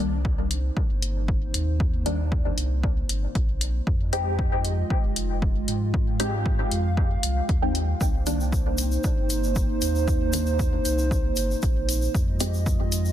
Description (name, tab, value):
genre	dub techno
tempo	116 BPM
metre	4/4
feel	straight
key	C minor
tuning	A4 = 442 Hz
part	dark analog pad	sustained chords	0.2-13.1 s	Ab3 to F5	-30 LUFS	right 3 dB	chorus, sidechain pumping
part	filtered dub chord stab	stabs	0.0-12.6 s	Eb3 to G4	-31 LUFS	left 2 dB	chorus, phaser, sidechain pumping, dub echo
part	pure sine sub bass	bass	0.0-13.1 s	F1 to Ab2	-26 LUFS	equal	sidechain pumping
part	electronic kick drum	drums	0.2-12.8 s	none	-26 LUFS	equal	none
part	electronic hi-hat	drums	0.5-13.0 s	none	-30 LUFS	left 3 dB	none
part	tube shaker	percussion	8.0-13.1 s	none	-34 LUFS	left 3 dB	none
room	little or no reverb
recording	dense, heavily limited modern master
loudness	-22 LUFS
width	side -11 dB against mid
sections	0.0-13.1 A section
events	none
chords	0.0 Cm7; 3.9 Fm7; 8.0 Cm7; 12.1 Fm7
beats	0.25 0.77 1.28 | 1.80 2.32 2.83 3.35 | 3.87 4.39 4.90 5.42 | 5.94 6.46 6.97 7.49 | 8.01 8.53 9.04 9.56 | 10.08 10.59 11.11 11.63 | 12.15 12.66